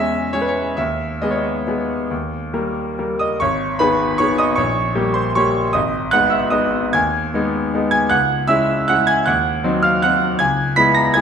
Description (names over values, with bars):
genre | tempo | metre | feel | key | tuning
classical, piano waltz | 132-168 BPM | 3/4 | rubato | G# minor | A4 = 439 Hz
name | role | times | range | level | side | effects
bright grand piano | solo | 0.0-11.2 s | G#1 to B6 | -15 LUFS | equal | none
room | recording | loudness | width
wet recital hall reverb, RT60 1.4 s | minimal, uncompressed stereo recording | -16 LUFS | side -7 dB against mid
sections
0.0-3.4 A section; 3.4-11.2 B section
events
none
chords
0.0 C#m/E; 0.8 G#m/D#; 2.1 D#; 3.4 G#m; 4.6 Gdim/Bb; 5.8 G#m; 8.1 C#m; 9.3 Cdim/Eb; 10.4 C#m7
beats
0.35 | 0.78 1.22 1.67 | 2.10 2.53 2.98 | 3.40 3.78 4.18 | 4.57 4.95 5.35 | 5.75 6.13 6.52 | 6.95 7.35 7.74 | 8.12 8.49 8.89 | 9.28 9.65 10.04 | 10.40 10.77 11.14